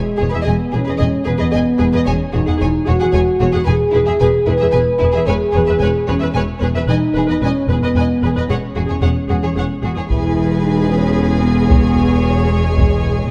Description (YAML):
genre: cinematic, epic orchestral film score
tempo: 75 BPM (dotted quarters)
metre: 6/8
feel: straight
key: E major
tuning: A4 = 436 Hz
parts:
  - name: mellow French horn section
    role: sustained chords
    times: 0.0-13.3 s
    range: G#3 to B4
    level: -20 LUFS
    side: equal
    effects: none
  - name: clear symphonic violin section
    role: melody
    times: 0.2-13.3 s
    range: G#4 to G#5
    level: -30 LUFS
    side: equal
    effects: none
  - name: clear studio violin section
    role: second line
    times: 0.2-13.3 s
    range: E4 to D#5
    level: -29 LUFS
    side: equal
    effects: none
  - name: warm symphonic viola section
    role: accompaniment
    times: 0.2-13.3 s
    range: G#4 to B4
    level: -28 LUFS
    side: equal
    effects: none
  - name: rich symphonic cello section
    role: bass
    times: 0.2-13.3 s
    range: E2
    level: -22 LUFS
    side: equal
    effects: none
  - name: rich symphonic double bass section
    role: bass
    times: 0.2-13.3 s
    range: E1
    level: -21 LUFS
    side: equal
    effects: none
  - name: taiko ensemble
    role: drums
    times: 10.1-13.3 s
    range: none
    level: -19 LUFS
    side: equal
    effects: none
room: moderate scoring stage reverb, RT60 1.9 s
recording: dark, warm production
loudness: -16 LUFS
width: mono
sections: 0.0-10.1 A section; 10.1-13.3 A section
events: none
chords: 0.5 G#m/E; 2.1 F#sus2/E; 3.7 E; 5.3 C#m7/E; 6.9 G#m/E (rootless); 8.5 F#sus2/E (rootless); 10.1 E; 11.7 C#m7/E